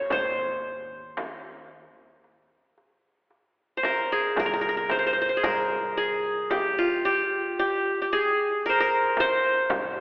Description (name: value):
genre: Arabic maqam ensemble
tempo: 112 BPM (eighths)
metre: 10/8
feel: straight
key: C minor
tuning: A4 = 440 Hz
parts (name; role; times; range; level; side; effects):
- qanun; melody; 0.0-10.0 s; F4 to Db5; -23 LUFS; equal; none
- upright bass; bass; 0.1-10.0 s; C2 to Eb2; -46 LUFS; equal; none
- darbuka; percussion; 0.1-9.9 s; none; -41 LUFS; equal; none
- frame drum; percussion; 0.1-9.9 s; none; -33 LUFS; equal; none
room: wet concert hall reverb, RT60 2.1 s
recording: recorded in a church or concert hall, telephone sound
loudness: -22 LUFS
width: side -37 dB against mid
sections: 0.0-10.0 A section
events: none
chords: none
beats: | 0.10 0.64 1.17 1.70 2.24 2.77 3.30 3.84 4.37 4.90 | 5.43 5.97 6.50 7.03 7.57 8.10 8.63 9.17 9.70